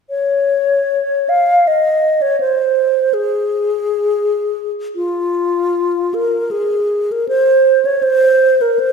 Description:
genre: classical, free, expressive piece for unaccompanied alto flute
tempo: 50-83 BPM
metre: 3/4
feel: rubato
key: unclear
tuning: A4 = 440 Hz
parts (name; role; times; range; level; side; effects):
- alto flute; solo; 0.1-8.9 s; F4 to F5; -13 LUFS; equal; none
room: wet scoring stage reverb, RT60 1.7 s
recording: minimal, uncompressed stereo recording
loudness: -13 LUFS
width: side -5 dB against mid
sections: 0.1-5.0 A section; 5.0-8.9 B section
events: none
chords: none

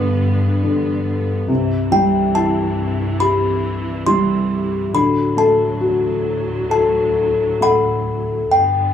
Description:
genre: children's music, lullaby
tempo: 69 BPM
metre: 4/4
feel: rubato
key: unclear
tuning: A4 = 440 Hz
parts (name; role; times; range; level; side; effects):
- music box; melody; 0.0-8.9 s; F#5 to C6; -20 LUFS; left 2 dB; none
- felt-muted upright piano; accompaniment; 0.0-8.5 s; G2 to A4; -18 LUFS; left 2 dB; none
- rich studio string section; sustained chords; 0.0-8.9 s; C2 to B3; -22 LUFS; equal; none
room: wet small room reverb, RT60 0.5 s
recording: heard from further back in the room, small room ambience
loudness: -15 LUFS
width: side -9 dB against mid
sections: 0.0-8.5 A section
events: none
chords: 0.0 G; 1.5 C; 4.9 D

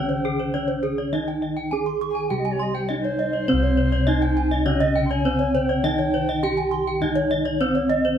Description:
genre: Balinese gamelan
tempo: 102 BPM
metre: 4/4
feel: straight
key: C pelog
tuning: A4 = 438 Hz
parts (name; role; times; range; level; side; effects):
- gamelan-type bronze metallophone; melody; 0.0-8.2 s; C4 to Ab4; -24 LUFS; right 2 dB; none
- breathy mellow alto recorder; second line; 0.0-7.3 s; C5 to C6; -32 LUFS; equal; none
- gamelan-type bronze metallophone; accompaniment; 0.0-8.2 s; C3 to G3; -30 LUFS; left 2 dB; none
- gamelan-type bronze metallophone; arpeggios; 0.0-8.2 s; Ab4 to C6; -28 LUFS; left 2 dB; none
- gamelan-type bossed gongs; bass; 0.0-8.2 s; C2 to Ab4; -27 LUFS; left 1 dB; none
- gamelan-type bronze metallophone; arpeggios; 0.1-8.0 s; Ab4 to Db6+35c; -26 LUFS; right 2 dB; none
room: moderate stone room reverb, RT60 1.0 s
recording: band playing live in one room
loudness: -20 LUFS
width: side -9 dB against mid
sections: 0.0-8.2 A section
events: none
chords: none

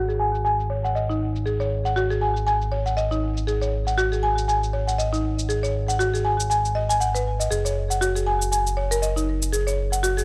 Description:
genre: afro house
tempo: 119 BPM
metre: 4/4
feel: swing 57% on 16ths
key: unclear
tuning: A4 = 441 Hz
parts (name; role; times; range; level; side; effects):
- buzzing marimba with medium mallets; arpeggios; 0.0-10.2 s; D#4 to G#5; -25 LUFS; equal; low-pass filter, tape echo
- smooth synth bass; bass; 0.0-10.2 s; F#1 to G#1; -28 LUFS; equal; none
- cabasa; drums; 0.1-10.2 s; none; -34 LUFS; equal; overdrive, low-pass filter on perc, studio reverb, low-pass filter on hats, low-pass filter on snare, low-pass filter on toms
room: little or no reverb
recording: dry, gritty hardware recording, transformer saturation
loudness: -23 LUFS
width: mono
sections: 0.0-10.2 A section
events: filter sweep on marimba 0.0-10.2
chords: 0.0 G#7(no3); 7.5 N.C.

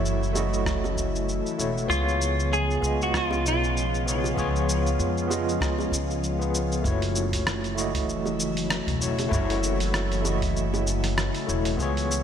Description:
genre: sunset chillout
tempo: 97 BPM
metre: 4/4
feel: swing 56% on 16ths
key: F# dorian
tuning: A4 = 440 Hz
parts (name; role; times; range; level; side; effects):
- overdriven tine electric piano; accompaniment; 0.0-12.2 s; A3 to D#5; -29 LUFS; moving between left 5 dB and right 6 dB; medium tremolo, auto-pan, ping-pong delay
- ethereal airy pad; sustained chords; 0.0-12.2 s; C#3 to E#4; -31 LUFS; left 1 dB; ensemble chorus, built-in reverb, phaser
- upright bass; bass; 0.0-12.2 s; E1 to E#2; -28 LUFS; equal; none
- dusty soul sampler-style drum kit; drums; 0.1-12.2 s; hi-hat, rim click, shaker; -31 LUFS; equal; overdrive
- bongos; percussion; 0.4-10.8 s; none; -37 LUFS; right 2 dB; none
- electronic kick drum; drums; 0.7-11.9 s; none; -31 LUFS; equal; none
- clean electric guitar; melody; 1.9-4.0 s; E#4 to G#4; -28 LUFS; equal; wide subtle chorus, digital delay
room: moderate lush hall reverb, RT60 2.6 s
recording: bright 1980s-style digital production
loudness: -23 LUFS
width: side -8 dB against mid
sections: 0.0-6.8 A section; 6.8-12.2 B section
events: none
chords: 0.0 F#m7; 1.9 C#7; 6.8 F#m7

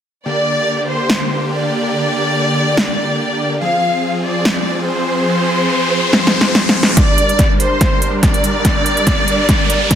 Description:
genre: heavy wobble dubstep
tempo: 143 BPM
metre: 4/4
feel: swing 53% on 16ths, half-time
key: G phrygian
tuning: A4 = 440 Hz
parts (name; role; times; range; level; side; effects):
- rich studio violin section; melody; 0.3-10.0 s; C5 to F5; -17 LUFS; equal; dub echo
- supersaw chords; sustained chords; 0.3-10.0 s; D3 to Bb4; -19 LUFS; equal; sidechain pumping, low-pass filter
- big-room dance drum kit; drums; 1.1-10.0 s; hi-hat, snare drum; -16 LUFS; equal; overdrive
- riser; sound effects; 4.3-10.0 s; none; -22 LUFS; equal; none
- electronic kick drum; drums; 7.0-10.0 s; none; -15 LUFS; equal; overdrive
room: light reverb, digital ambience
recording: dense, heavily limited modern master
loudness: -12 LUFS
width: side -9 dB against mid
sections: 0.3-7.0 A section; 7.0-10.0 B section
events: riser 4.3-7.0, 7.0-10.0; drum fill 6.1-7.0, 7.0-10.0; build-up 7.0-10.0; filter sweep on supersaw synth 7.0-10.0; filter sweep 7.0-10.0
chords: 0.3 Gm; 3.6 Fm; 7.0 Gm

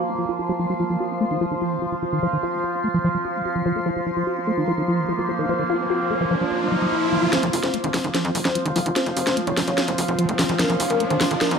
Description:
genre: psychedelic trance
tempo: 147 BPM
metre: 4/4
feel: straight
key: unclear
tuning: A4 = 440 Hz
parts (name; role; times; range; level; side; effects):
- overtone-sweeping drone; sustained chords; 0.0-11.6 s; F3 to F4; -26 LUFS; right 1 dB; chorus, built-in reverb
- liquid acid bass; riff; 0.0-11.6 s; Eb3 to Gb4; -25 LUFS; equal; phaser, auto-pan, dub echo
- granular cloud pad; texture; 0.0-11.6 s; F4 to C6; -29 LUFS; right 1 dB; built-in reverb
- riser; sound effects; 5.2-11.6 s; none; -29 LUFS; equal; none
- wide unison lead; melody; 7.3-11.6 s; Bb4 to F5; -27 LUFS; left 2 dB; phaser, digital delay
- garage drum kit; drums; 7.3-11.6 s; hi-hat, snare drum; -24 LUFS; equal; overdrive
- tight sequencer bass; bass; 7.4-11.6 s; F1 to F2; -27 LUFS; equal; high-pass filter
room: moderate lush hall reverb, RT60 1.9 s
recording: none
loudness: -20 LUFS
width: side -6 dB against mid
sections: 0.0-7.3 A section; 7.3-11.6 B section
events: riser 5.2-7.3, 7.3-11.6; build-up 7.3-11.6; drum fill 7.3-11.6; filter sweep on acid bass 7.3-11.6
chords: 0.0 F5

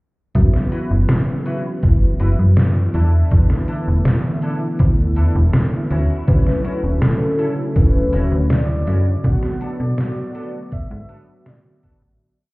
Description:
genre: vaporwave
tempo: 81 BPM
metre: 4/4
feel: straight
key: B minor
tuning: A4 = 444 Hz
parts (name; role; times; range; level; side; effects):
- mellow synth brass; accompaniment; 0.3-12.2 s; C#3 to F#4; -23 LUFS; equal; analog chorus, tape echo
- detuned 8-bit digital drum machine; drums; 0.3-12.0 s; hi-hat, snare drum; -21 LUFS; equal; vintage 12-bit sampler grit
- slap-like FM bass; bass; 0.4-12.2 s; D1 to B2; -15 LUFS; equal; none
- electronic kick drum; drums; 0.4-12.0 s; none; -17 LUFS; equal; vintage 12-bit sampler grit
- semi-hollow electric guitar; riff; 0.7-12.0 s; B3 to B4; -31 LUFS; left 1 dB; analog chorus, tape echo
- warm velvety synth lead; melody; 6.3-12.0 s; A4 to F#5; -26 LUFS; left 1 dB; chorus, tape echo
room: little or no reverb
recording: heard muffled through a wall, club reverb, EQ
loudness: -15 LUFS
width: side -23 dB against mid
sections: 0.4-12.2 groove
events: fade-out 8.3-12.2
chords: 0.4 F#7sus4; 2.9 E7sus4; 5.9 Dmaj9; 9.2 Bm7

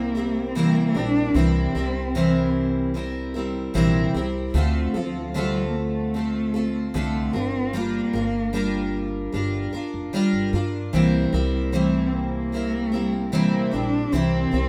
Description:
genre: pop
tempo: 75 BPM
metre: 4/4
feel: straight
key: unclear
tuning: A4 = 440 Hz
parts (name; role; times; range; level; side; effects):
- dark cello; melody; 0.0-14.7 s; F3 to D4; -28 LUFS; equal; digital delay
- picked steel-string acoustic guitar; accompaniment; 0.0-14.7 s; C3 to Bb4; -26 LUFS; equal; double-tracked
- upright bass; bass; 0.0-14.7 s; F1 to G2; -30 LUFS; equal; none
room: light reverb, small room ambience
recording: rough home demo mix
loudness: -23 LUFS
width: mono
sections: 0.0-14.7 A section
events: none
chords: 0.0 C7; 4.5 Dm7; 7.3 Gm7; 10.9 C7

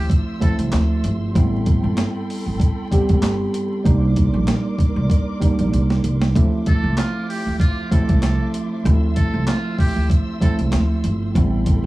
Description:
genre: hip hop, boom-bap hip-hop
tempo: 96 BPM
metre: 4/4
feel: swing 55% on 16ths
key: D minor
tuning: A4 = 442 Hz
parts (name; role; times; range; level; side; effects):
- trumpet with metal mute; melody; 0.0-0.6, 6.7-10.6 s; F4 to A4; -30 LUFS; right 1 dB; high-pass filter, low-pass filter, tape echo
- tine electric piano; accompaniment; 0.0-11.9 s; E3 to G4; -22 LUFS; right 2 dB; medium stereo tremolo, high-pass filter, low-pass filter
- warm studio string section; sustained chords; 0.0-11.9 s; F3 to E6; -35 LUFS; left 1 dB; high-pass filter, low-pass filter
- upright bass; bass; 0.0-11.9 s; G1 to D2; -20 LUFS; equal; none
- boom bap sampler-style drum kit; drums; 0.1-11.8 s; handclaps, hi-hat, kick drum, snare drum; -18 LUFS; equal; none
room: small room ambience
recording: dry, gritty hardware recording, vinyl crackle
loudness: -16 LUFS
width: side -18 dB against mid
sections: 0.0-11.9 A section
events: drum fill 5.7-6.4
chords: 0.0 Dm9; 1.4 Am9; 3.9 Cm9; 6.4 Dm9; 11.4 Am9

